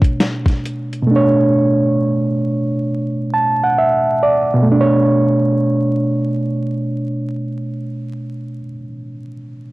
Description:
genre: lo-fi hip hop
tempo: 67 BPM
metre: 4/4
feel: swing 63% on 16ths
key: B minor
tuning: A4 = 439 Hz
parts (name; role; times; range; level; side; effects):
- reed electric piano; accompaniment; 0.0-9.7 s; B2 to A5; -15 LUFS; right 1 dB; overdrive, low-pass filter, cassette tape
- dusty soul sampler-style drum kit; drums; 0.0-1.1 s; hi-hat, kick drum, snare drum; -15 LUFS; equal; cassette tape
room: moderate spring reverb, RT60 2.4 s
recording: home recording on cassette, vinyl crackle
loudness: -14 LUFS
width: side -19 dB against mid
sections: 0.0-4.7 A section; 4.7-8.2 B section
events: none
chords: 0.0 Bm9

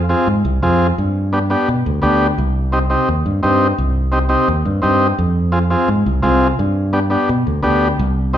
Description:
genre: latin, cumbia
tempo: 171 BPM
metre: 4/4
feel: straight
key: C harmonic minor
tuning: A4 = 438 Hz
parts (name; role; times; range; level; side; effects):
- fingered electric bass; bass; 0.0-8.4 s; C2 to B2; -17 LUFS; equal; none
- combo organ; accompaniment; 0.1-8.4 s; B3 to Ab4; -17 LUFS; equal; none
room: moderate recital hall reverb, RT60 1.4 s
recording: recorded in a church or concert hall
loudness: -14 LUFS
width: side -10 dB against mid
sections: 0.0-8.4 A section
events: none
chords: 0.0 Fm; 1.0 G; 2.4 Cm; 5.2 Fm; 6.6 G

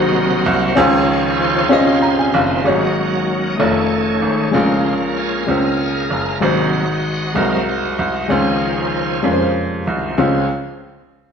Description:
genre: gospel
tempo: 64 BPM (dotted quarters)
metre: 6/8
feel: straight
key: Db major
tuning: A4 = 440 Hz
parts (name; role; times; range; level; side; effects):
- clear upright piano; accompaniment; 0.0-10.5 s; Db2 to Bb5; -17 LUFS; left 2 dB; none
- bright tonewheel organ; sustained chords; 0.0-10.5 s; C3 to Gb5; -20 LUFS; right 1 dB; slow rotary speaker, chorus vibrato
- bright baby grand piano; bass; 0.0-10.5 s; F1 to F2; -20 LUFS; right 2 dB; none
room: wet stone room reverb, RT60 1.4 s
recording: band playing live in one room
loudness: -14 LUFS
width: side -7 dB against mid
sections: 0.0-2.6 A section; 2.6-10.2 B section; 10.2-11.3 C section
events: tonewheel organ solo 0.0-2.6, 2.6-10.2; upright piano fill 1.7-2.6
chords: 0.0 Ab7; 0.8 Dbmaj7; 2.6 Ab7sus4; 3.6 F7alt; 4.5 Bbm7; 6.4 Ab7; 8.3 Dbmaj7

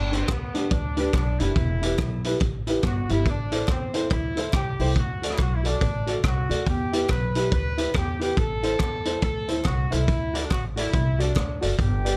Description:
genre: ska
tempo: 141 BPM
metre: 4/4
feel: swing 62% on 8ths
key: unclear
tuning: A4 = 438 Hz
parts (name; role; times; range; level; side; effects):
- clear horn section; melody; 0.0-12.2 s; B3 to B4; -33 LUFS; equal; none
- upright bass; bass; 0.0-12.1 s; E1 to E2; -29 LUFS; equal; none
- hollow-body jazz guitar; accompaniment; 0.1-12.2 s; D4 to D5; -33 LUFS; equal; none
- dark upright piano; stabs; 0.1-12.2 s; D4 to D5; -32 LUFS; equal; none
- crunchy breakbeat drum kit; drums; 0.1-12.1 s; hi-hat, kick drum, rim click; -29 LUFS; equal; vintage 12-bit sampler grit
- group handclap; percussion; 0.3-11.5 s; none; -45 LUFS; equal; none
room: little or no reverb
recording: none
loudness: -24 LUFS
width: mono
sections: 0.0-12.2 A section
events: none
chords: 0.0 G; 1.6 Em; 3.3 Am; 5.0 D; 6.7 Em; 8.4 Am; 10.1 D

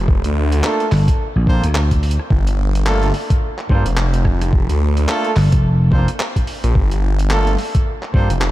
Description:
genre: glitch hop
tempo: 108 BPM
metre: 4/4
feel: swing 59% on 16ths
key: G minor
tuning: A4 = 440 Hz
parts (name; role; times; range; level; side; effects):
- phased detuned saw bass; bass; 0.0-8.5 s; F1 to D2; -16 LUFS; equal; phaser
- electronic kick drum; drums; 0.1-8.3 s; none; -16 LUFS; equal; small room ambience
- boom bap sampler-style drum kit; drums; 0.2-8.5 s; handclaps, hi-hat, rim click; -26 LUFS; equal; small room ambience
- bright horn section; stabs; 0.6-8.3 s; A3 to C5; -24 LUFS; right 1 dB; sidechain pumping, diffuse ambient delay
- vintage slap bass; bass; 0.9-8.3 s; F1 to G2; -15 LUFS; equal; none
room: digital ambience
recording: none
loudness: -14 LUFS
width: side -16 dB against mid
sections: 0.0-8.5 A section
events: none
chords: 0.0 Gm7

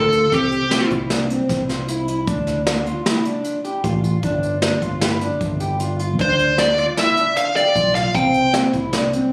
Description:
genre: progressive instrumental, band music in an uneven meter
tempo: 153 BPM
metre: 5/4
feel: straight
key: D minor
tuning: A4 = 440 Hz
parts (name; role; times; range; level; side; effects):
- dark smooth lead guitar; melody; 0.0-0.9, 6.2-8.5 s; G4 to G5; -19 LUFS; equal; overdrive
- electric guitar at the edge of break-up; arpeggios; 0.0-9.3 s; C4 to G4; -25 LUFS; equal; lush chorus, digital delay
- modern bright fingered electric bass; bass; 0.0-9.2 s; G1 to D2; -26 LUFS; equal; none
- jazz brush drum kit; drums; 0.1-9.2 s; hi-hat, kick drum, snare drum; -26 LUFS; equal; none
room: moderate recital hall reverb, RT60 1.3 s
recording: recorded on a phone in the room, club reverb, compression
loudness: -19 LUFS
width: mono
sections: 0.0-9.3 A section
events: none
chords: 0.3 C; 2.3 Dm; 4.2 G5; 6.2 Dm; 8.2 C

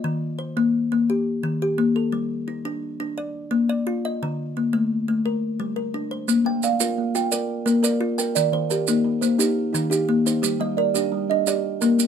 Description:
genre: southern african traditional, mbira-style interlocking cycle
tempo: 116 BPM (dotted quarters)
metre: 12/8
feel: straight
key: Bb major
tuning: A4 = 441 Hz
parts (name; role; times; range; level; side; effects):
- kalimba; arpeggios; 0.0-12.1 s; D3 to G5; -22 LUFS; left 3 dB; none
- maracas; percussion; 6.3-12.1 s; none; -26 LUFS; right 11 dB; none
- kalimba; arpeggios; 6.5-12.1 s; Eb3 to G5; -24 LUFS; right 9 dB; none
room: light reverb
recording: minimal, uncompressed stereo recording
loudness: -20 LUFS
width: side -7 dB against mid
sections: 0.0-6.3 A section; 6.3-12.1 A section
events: none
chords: 0.0 Eb; 2.1 G5; 3.2 Bb; 4.2 D5; 5.2 Gm; 6.3 Bb; 8.4 Eb; 10.4 Gm; 11.5 Bb

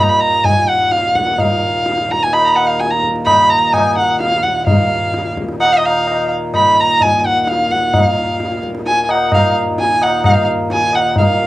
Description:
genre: indian classical, Hindustani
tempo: 129 BPM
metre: 7/4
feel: straight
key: Eb raga darbari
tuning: A4 = 441 Hz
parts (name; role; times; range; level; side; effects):
- warm violin; melody; 0.0-11.5 s; Eb5 to Cb6; -14 LUFS; right 1 dB; cassette tape
- pedal harmonium; drone; 0.0-11.5 s; Eb2 to Bb2; -23 LUFS; left 1 dB; none
- tabla; percussion; 0.4-11.3 s; none; -17 LUFS; left 1 dB; none
room: moderate small room reverb, RT60 0.5 s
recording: home recording on cassette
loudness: -12 LUFS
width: side -16 dB against mid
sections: 0.0-11.2 A section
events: none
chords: none

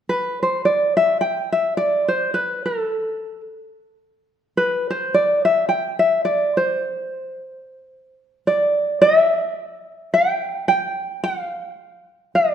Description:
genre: hawaiian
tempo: 108 BPM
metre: 4/4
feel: swing 57% on 8ths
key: C major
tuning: A4 = 440 Hz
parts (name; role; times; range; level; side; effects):
- tenor ukulele; solo; 0.1-12.5 s; A4 to G5; -17 LUFS; equal; none
room: moderate recital hall reverb, RT60 1.5 s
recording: minimal, uncompressed stereo recording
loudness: -17 LUFS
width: side -9 dB against mid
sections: 0.1-9.0 A section; 9.0-12.5 B section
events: none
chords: none

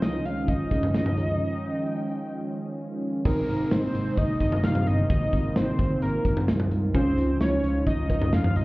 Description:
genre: synth-pop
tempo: 130 BPM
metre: 4/4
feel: straight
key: Ab major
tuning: A4 = 440 Hz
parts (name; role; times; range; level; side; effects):
- fat analog lead; melody; 0.0-8.6 s; Bb4 to F5; -31 LUFS; equal; chorus, tape echo
- funky polysynth comp; accompaniment; 0.0-8.6 s; C4 to Ab4; -32 LUFS; right 1 dB; chorus
- warm analog pad; sustained chords; 0.0-8.6 s; C3 to G5; -30 LUFS; right 1 dB; lush chorus
- smooth synth bass; bass; 0.0-8.6 s; G1 to F2; -27 LUFS; equal; none
- modern studio drum kit; drums; 0.0-8.6 s; cowbell, crash cymbal, hi-hat, kick drum, snare drum, toms; -26 LUFS; equal; none
- downlifter; sound effects; 3.3-6.9 s; none; -52 LUFS; equal; none
room: light reverb, small room ambience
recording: heard muffled through a wall, club ambience, EQ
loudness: -22 LUFS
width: side -20 dB against mid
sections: 0.0-3.3 A section; 3.3-8.6 B section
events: break 1.4-3.3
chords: 0.0 Dbadd9; 3.3 Abadd9; 6.9 Dbadd9

